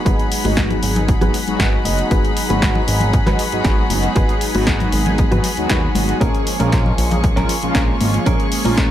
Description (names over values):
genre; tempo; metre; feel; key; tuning
nu-disco, nu disco; 117 BPM; 4/4; straight; G# dorian; A4 = 440 Hz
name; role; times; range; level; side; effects
mellow synth brass; accompaniment; 0.0-8.9 s; E#3 to G#4; -21 LUFS; equal; chorus, phaser, sidechain pumping, slapback echo
rich chamber string section; sustained chords; 0.0-8.9 s; A#3 to C#6; -25 LUFS; left 1 dB; sidechain pumping
direct-recorded clean electric guitar; riff; 0.1-8.9 s; C#4 to G#5; -25 LUFS; right 2 dB; wide subtle chorus, low-pass filter, slapback echo
fat analog bass; bass; 0.1-8.9 s; F#1 to D#2; -20 LUFS; equal; none
electronic kick drum; drums; 0.1-8.9 s; none; -19 LUFS; equal; small room reverb
house drum kit; drums; 0.1-8.9 s; hi-hat, snare drum; -24 LUFS; equal; small room reverb
congas; percussion; 0.4-8.7 s; none; -26 LUFS; left 3 dB; none
room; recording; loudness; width
digital ambience; none; -14 LUFS; side -12 dB against mid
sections
0.0-8.9 A section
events
filter sweep on clean electric guitar 0.0-8.9; clean electric guitar fill 1.3-2.1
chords
0.0 G#m7; 6.2 A#m7